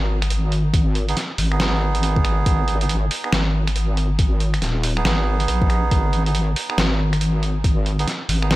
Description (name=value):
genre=deep dubstep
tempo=139 BPM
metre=4/4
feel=swing 62% on 16ths, half-time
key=G# minor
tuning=A4 = 440 Hz
part: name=wobble bass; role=bass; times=0.0-8.6 s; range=D#1 to A#1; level=-20 LUFS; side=equal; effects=chorus
part: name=trip hop sampler-style drum kit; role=drums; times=0.2-8.6 s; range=finger snaps, hi-hat, snare drum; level=-24 LUFS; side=equal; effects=small room ambience
part: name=electronic kick drum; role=drums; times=0.7-7.7 s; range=none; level=-19 LUFS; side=equal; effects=small room ambience
part: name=melodica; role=stabs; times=1.1-8.6 s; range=B3 to G#4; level=-27 LUFS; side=right 4 dB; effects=dub echo
room=digital ambience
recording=none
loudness=-18 LUFS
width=side -18 dB against mid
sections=0.0-8.6 A section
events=none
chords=0.0 G#m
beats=0.30 | 0.74 1.17 1.60 2.03 | 2.46 2.89 3.33 3.76 | 4.19 4.62 5.05 5.48 | 5.92 6.35 6.78 7.21 | 7.64 8.07 8.51